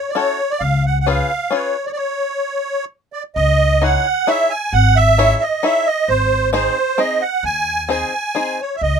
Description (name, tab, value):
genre	musette waltz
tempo	132 BPM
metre	3/4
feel	straight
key	C# harmonic minor from 3.4 s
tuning	A4 = 441 Hz
part	musette accordion	melody	0.0-9.0 s	B#4 to G#5	-17 LUFS	right 3 dB	none
part	bluegrass banjo	accompaniment	0.2-1.8, 3.8-8.6 s	B#3 to C#5	-20 LUFS	left 7 dB	none
part	upright bass	bass	0.6-1.2, 3.4-9.0 s	G#1 to D#2	-18 LUFS	left 1 dB	none
room	light reverb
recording	minimal, uncompressed stereo recording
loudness	-15 LUFS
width	side -7 dB against mid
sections	0.0-3.4 A section; 3.4-9.0 B section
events	stop 2.0-3.4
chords	0.0 F#m7; 0.6 C#7; 2.0 N.C.; 3.4 C#madd9; 6.1 G#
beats	0.16 | 0.62 1.07 1.52 | 1.98 2.43 2.90 | 3.36 3.82 4.28 | 4.74 5.19 5.64 | 6.09 6.54 6.99 | 7.44 7.89 8.35 | 8.81